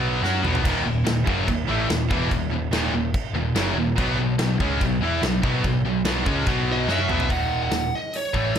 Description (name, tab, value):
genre	heavy metal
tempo	144 BPM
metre	4/4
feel	straight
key	Eb phrygian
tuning	A4 = 443 Hz
part	distorted electric guitar	riff	0.0-7.3 s	Eb2 to F#4	-28 LUFS	left 1 dB	overdrive
part	heavy high-gain guitar	riff	0.0-8.6 s	Eb2 to F#4	-28 LUFS	right 8 dB	distortion
part	scooped high-gain guitar	riff	0.0-8.6 s	Eb2 to F#4	-27 LUFS	left 10 dB	distortion
part	overdriven picked electric bass	bass	0.0-8.6 s	Eb1 to F#2	-26 LUFS	equal	none
part	big rock drum kit	drums	0.2-8.6 s	china cymbal, crash cymbal, hi-hat, kick drum, snare drum, toms	-26 LUFS	equal	none
part	high-gain lead guitar	melody	6.7-8.6 s	Db5 to Gb5	-26 LUFS	right 2 dB	distortion
room	light reverb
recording	none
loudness	-20 LUFS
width	side -8 dB against mid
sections	0.0-7.3 A section; 7.3-8.6 B section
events	drum fill 0.2-0.6, 6.9-7.3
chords	0.0 B5; 0.6 Ebm; 4.0 B5; 7.3 Eb5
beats	0.23 | 0.64 1.06 1.47 1.89 | 2.31 2.72 3.14 3.56 | 3.97 4.39 4.80 5.22 | 5.63 6.05 6.47 6.88 | 7.30 7.71 8.13 8.55